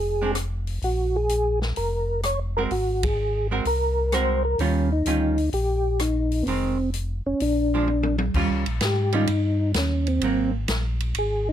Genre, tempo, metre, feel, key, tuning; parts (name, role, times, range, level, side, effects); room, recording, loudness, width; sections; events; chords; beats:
soul jazz organ trio; 128 BPM; 4/4; swing 68% on 8ths; Eb mixolydian; A4 = 440 Hz
percussive tonewheel organ; melody; 0.0-11.5 s; Cb4 to Db5; -24 LUFS; equal; slow rotary speaker, chorus vibrato
mellow tonewheel organ; bass; 0.0-11.5 s; F1 to Ab2; -25 LUFS; equal; slow rotary speaker
archtop guitar, miked and amplified; accompaniment; 0.2-10.5 s; Eb3 to Bb4; -26 LUFS; right 5 dB
swinging big-band drum kit; drums; 0.3-11.3 s; crash cymbal, hi-hat, kick drum, ride cymbal, rim click, snare drum, toms; -30 LUFS; equal
little or no reverb; close, detailed microphones; -21 LUFS; side -10 dB against mid
0.0-8.3 A section; 8.3-11.5 B section
band accent 2.9; drum fill 7.9-8.3; tonewheel organ solo 8.3-11.5
0.0 Bb7(no3); 2.7 Ab9; 4.6 Eb9; 6.5 Fm7; 7.4 Bb7; 8.3 Eb9; 10.2 Ab9
0.36 | 0.83 1.30 1.77 2.24 | 2.71 3.18 3.65 4.12 | 4.59 5.06 5.53 6.00 | 6.47 6.94 7.41 7.88 | 8.34 8.81 9.28 9.75 | 10.22 10.69 11.15